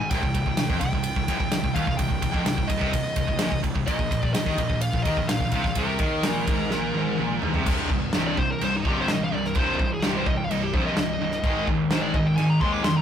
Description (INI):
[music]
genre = heavy metal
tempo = 127 BPM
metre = 4/4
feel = straight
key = C minor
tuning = A4 = 440 Hz
[part]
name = high-gain lead guitar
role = melody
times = 0.0-13.0 s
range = Eb4 to D6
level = -29 LUFS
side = left 1 dB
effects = distortion
[part]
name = distorted electric guitar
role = riff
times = 0.0-13.0 s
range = C2 to Ab3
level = -28 LUFS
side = left 5 dB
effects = distortion
[part]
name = scooped high-gain guitar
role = riff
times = 0.0-13.0 s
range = C2 to Ab3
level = -29 LUFS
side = right 6 dB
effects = distortion
[part]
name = fuzz picked electric bass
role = bass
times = 0.0-13.0 s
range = C1 to F2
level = -32 LUFS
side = equal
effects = overdrive
[part]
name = modern studio drum kit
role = drums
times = 0.1-13.0 s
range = crash cymbal, kick drum, ride cymbal, snare drum, toms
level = -26 LUFS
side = equal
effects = none
[sound]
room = light reverb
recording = rough rehearsal-room recording, warm saturation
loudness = -22 LUFS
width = side -9 dB against mid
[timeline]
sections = 0.0-7.7 A section; 7.7-13.0 B section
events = drum fill 6.7-7.7; lead electric guitar solo 7.7-13.0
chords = 0.1 Cm; 3.9 Abadd9; 7.7 Cm; 11.4 Ab